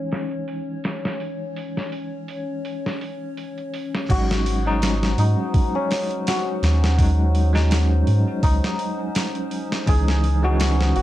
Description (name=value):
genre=trip hop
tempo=83 BPM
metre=4/4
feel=swing 55% on 16ths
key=unclear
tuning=A4 = 440 Hz
part: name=bell-like tine electric piano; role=accompaniment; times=0.0-11.0 s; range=E3 to D#4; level=-28 LUFS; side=equal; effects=fast stereo tremolo
part: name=warbly tape-like pad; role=sustained chords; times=0.0-11.0 s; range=C#4 to C#5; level=-32 LUFS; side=left 2 dB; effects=chorus, built-in reverb, vintage 12-bit sampler grit
part: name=boom bap sampler-style drum kit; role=drums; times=0.1-11.0 s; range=crash cymbal, hi-hat, kick drum, snare drum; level=-24 LUFS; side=equal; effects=low-pass filter on hats, low-pass filter on snare, low-pass filter on kick, low-pass filter on cymbals
part: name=santur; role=melody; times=4.1-11.0 s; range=C#4 to G#4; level=-27 LUFS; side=left 2 dB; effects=tape echo
part: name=soft dub sub bass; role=bass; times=4.1-11.0 s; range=G#1 to G#2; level=-18 LUFS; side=equal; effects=tube saturation
room=digital ambience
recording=dark, warm production, low-pass filter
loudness=-19 LUFS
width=side -14 dB against mid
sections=0.0-4.1 A section; 4.1-11.0 B section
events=filter sweep on ambient pad 0.0-4.1; filter sweep 0.0-4.1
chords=0.0 C#madd9; 4.1 G#7sus4; 9.9 C#madd9